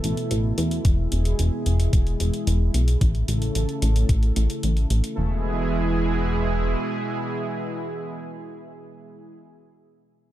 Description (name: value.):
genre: synthwave.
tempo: 111 BPM.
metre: 4/4.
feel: straight.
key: unclear.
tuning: A4 = 441 Hz.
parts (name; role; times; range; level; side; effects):
lush unison pad; sustained chords; 0.0-9.4 s; B2 to A4; -27 LUFS; right 1 dB; chorus, sidechain pumping.
chorused synth bass; bass; 0.0-6.8 s; E1 to E2; -22 LUFS; equal; none.
electronic hi-hat; drums; 0.0-5.1 s; none; -34 LUFS; left 1 dB; none.
electronic kick drum; drums; 0.8-4.2 s; none; -20 LUFS; equal; none.
room: little or no reverb.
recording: none.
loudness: -20 LUFS.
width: side -13 dB against mid.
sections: 0.0-5.2 A section; 5.2-9.5 B section.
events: none.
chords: 0.0 Asus2; 0.8 E; 3.0 A; 5.2 E.